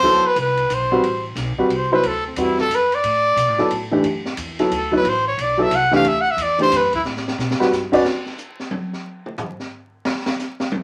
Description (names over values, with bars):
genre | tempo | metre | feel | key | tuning
modal jazz | 180 BPM | 3/4 | swing 64% on 8ths | D mixolydian | A4 = 439 Hz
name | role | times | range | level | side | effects
clear trumpet | melody | 0.0-7.0 s | C4 to F#5 | -20 LUFS | equal | none
dark upright piano | accompaniment | 0.0-8.0 s | E3 to D5 | -21 LUFS | equal | none
upright bass | bass | 0.0-8.0 s | A1 to B2 | -32 LUFS | equal | none
open jazz drum kit | drums | 0.0-10.8 s | crash cymbal, hi-hat, kick drum, ride cymbal, snare drum, toms | -30 LUFS | equal | none
room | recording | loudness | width
wet small room reverb, RT60 0.5 s | vinyl crackle | -19 LUFS | mono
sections
0.0-8.1 A section; 8.1-10.8 A section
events
trumpet solo 0.0-8.1; drum fill 7.0-7.7; drum solo 8.1-10.8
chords
0.0 D13; 8.1 N.C.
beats
| 0.04 0.37 0.71 | 1.04 1.37 1.71 | 2.04 2.38 2.71 | 3.04 3.38 3.71 | 4.05 4.38 4.71 | 5.05 5.38 5.72 | 6.05 6.38 6.72 | 7.05 7.38 7.72 | 8.05 8.38 8.72 | 9.05 9.38 9.72 | 10.05 10.39 10.72